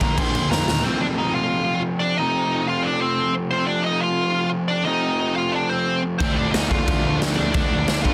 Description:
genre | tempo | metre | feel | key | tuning
punk rock | 179 BPM | 4/4 | straight | F mixolydian | A4 = 440 Hz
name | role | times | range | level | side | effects
nasal lead guitar with a parked wah | melody | 0.0-8.1 s | C4 to C6 | -25 LUFS | equal | overdrive
cranked stack guitar | riff | 0.0-0.7, 6.2-8.1 s | Bb2 to D4 | -35 LUFS | equal | none
crunchy overdriven guitar | riff | 0.0-0.8, 6.2-8.1 s | Bb2 to D4 | -32 LUFS | equal | none
overdriven semi-hollow guitar | riff | 0.0-8.1 s | F2 to D4 | -27 LUFS | equal | none
growling picked electric bass | bass | 0.0-0.8, 6.2-8.1 s | Bb1 to F2 | -29 LUFS | equal | overdrive
raw garage drum kit | drums | 0.0-0.8, 6.2-8.1 s | crash cymbal, kick drum, snare drum | -26 LUFS | equal | none
room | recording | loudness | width
light reverb | dense, heavily limited modern master | -21 LUFS | mono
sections
0.8-8.1 A section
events
drum fill 0.5-0.8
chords
0.0 Bb; 0.8 F; 6.2 Dm

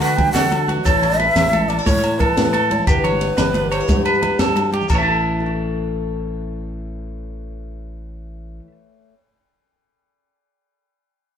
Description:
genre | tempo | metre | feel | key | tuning
highlife guitar band | 119 BPM (dotted quarters) | 12/8 | straight | A mixolydian | A4 = 444 Hz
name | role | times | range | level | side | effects
breathy long shakuhachi | melody | 0.0-4.6 s | B4 to G5 | -21 LUFS | left 1 dB | none
fingerpicked swing-style acoustic guitar | accompaniment | 0.0-9.2 s | F#2 to C#5 | -26 LUFS | left 3 dB | none
electric guitar at the edge of break-up | arpeggios | 0.0-8.7 s | F#4 to A5 | -21 LUFS | right 4 dB | none
fingered electric bass | bass | 0.0-8.6 s | G1 to D3 | -24 LUFS | left 1 dB | none
compact cocktail drum kit | drums | 0.0-5.0 s | crash cymbal, kick drum, ride cymbal, snare drum | -22 LUFS | equal | none
agogo bells | percussion | 0.0-5.0 s | none | -28 LUFS | left 2 dB | none
congas | percussion | 0.1-5.1 s | none | -26 LUFS | right 1 dB | none
shekere | percussion | 0.2-5.0 s | none | -29 LUFS | left 2 dB | none
room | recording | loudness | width
moderate studio reverb, RT60 0.6 s | band playing live in one room | -15 LUFS | side -8 dB against mid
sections
0.0-4.9 A section; 4.9-8.9 B section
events
none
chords
0.0 D; 0.9 A; 2.9 G6; 4.9 A

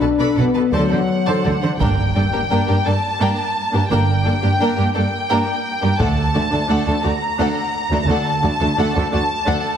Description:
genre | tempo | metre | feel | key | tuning
cinematic, epic orchestral film score | 57 BPM (dotted quarters) | 6/8 | straight | G harmonic minor | A4 = 441 Hz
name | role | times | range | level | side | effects
rich studio violin section | second line | 0.0-9.6 s | D4 to B5 | -25 LUFS | left 2 dB | none
rich symphonic viola section | accompaniment | 0.0-9.6 s | A3 to C5 | -24 LUFS | right 1 dB | none
mellow French horn section | sustained chords | 0.0-1.8 s | F#3 to D4 | -18 LUFS | left 5 dB | none
rich symphonic cello section | bass | 0.0-9.5 s | D2 to D3 | -21 LUFS | right 2 dB | none
rich symphonic double bass section | bass | 0.0-8.2 s | G1 to D2 | -23 LUFS | right 3 dB | none
warm symphonic violin section | melody | 0.7-9.8 s | F#5 to Bb5 | -23 LUFS | left 1 dB | none
taiko ensemble | drums | 1.8-7.3 s | none | -24 LUFS | equal | none
impact | sound effects | 1.8-3.9 s | none | -30 LUFS | right 1 dB | none
room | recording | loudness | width
moderate scoring stage reverb, RT60 2.0 s | heavily compressed radio sound | -16 LUFS | side -8 dB against mid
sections
0.0-1.8 A section; 1.8-9.8 B section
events
impact 1.8-3.9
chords
0.0 Bm7; 0.7 D7; 1.8 Gmadd9; 6.0 D

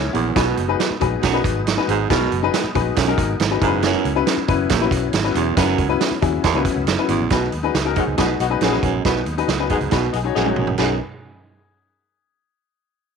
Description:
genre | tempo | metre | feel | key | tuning
uptempo 1960s-style soul | 138 BPM | 4/4 | straight | B major | A4 = 440 Hz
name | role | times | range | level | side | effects
clear upright piano | accompaniment | 0.0-11.0 s | C#4 to G#5 | -22 LUFS | left 13 dB | none
bright tonewheel organ | sustained chords | 0.0-11.0 s | F#3 to E4 | -31 LUFS | equal | chorus vibrato, slow rotary speaker
vintage muted fingered electric bass | bass | 0.0-11.0 s | E1 to E2 | -25 LUFS | equal | none
breathy baritone saxophone | riff | 0.1-11.0 s | D#2 to B2 | -22 LUFS | right 11 dB | none
vintage drum kit | drums | 0.1-10.9 s | crash cymbal, hi-hat, kick drum, snare drum, toms | -22 LUFS | right 5 dB | none
mellow horn section | second line | 8.0-10.9 s | D#3 to G#4 | -24 LUFS | left 12 dB | none
room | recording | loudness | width
light reverb | 1960s-style stereo with parts hard left and right | -17 LUFS | side -6 dB against mid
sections
0.0-7.3 A section; 7.3-10.8 B section; 10.8-12.5 C section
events
upright piano fill 0.0-0.4; drum fill 10.4-10.8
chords
0.4 B6; 3.6 F#7sus4; 7.3 B6

